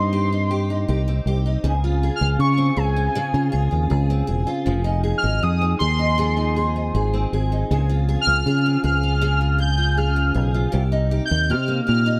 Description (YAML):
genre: indie pop, bedroom pop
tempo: 79 BPM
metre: 4/4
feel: straight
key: unclear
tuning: A4 = 440 Hz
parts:
  - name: warm velvety synth lead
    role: melody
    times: 0.0-12.2 s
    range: Ab5 to G6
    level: -26 LUFS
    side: equal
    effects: subtle chorus, tape echo
  - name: picked steel-string acoustic guitar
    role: accompaniment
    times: 0.0-12.2 s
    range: C3 to Ab4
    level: -27 LUFS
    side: equal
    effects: ensemble chorus, vibrato effect
  - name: fingered electric bass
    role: bass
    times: 0.0-12.2 s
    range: Fb1 to Db3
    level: -22 LUFS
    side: equal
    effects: none
room: light reverb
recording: none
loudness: -21 LUFS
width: mono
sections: 0.0-12.2 A section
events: none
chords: 0.0 Abmaj7 (rootless); 1.6 Dbmaj7; 4.7 Fm7; 7.7 Dbmaj7; 10.7 Cm7